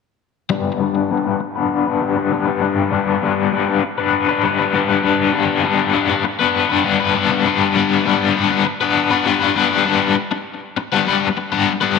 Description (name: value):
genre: rock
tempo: 100 BPM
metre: 4/4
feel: straight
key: G major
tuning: A4 = 440 Hz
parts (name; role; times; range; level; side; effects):
- crunchy overdriven guitar; solo; 0.5-12.0 s; G3 to B4; -15 LUFS; left 7 dB; tremolo, low-pass filter, tape echo
room: moderate echo chamber reverb, RT60 1.7 s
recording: none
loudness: -15 LUFS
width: side -5 dB against mid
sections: 0.5-10.2 A section; 10.2-12.0 B section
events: filter sweep on overdriven electric guitar 0.5-10.2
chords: 0.5 G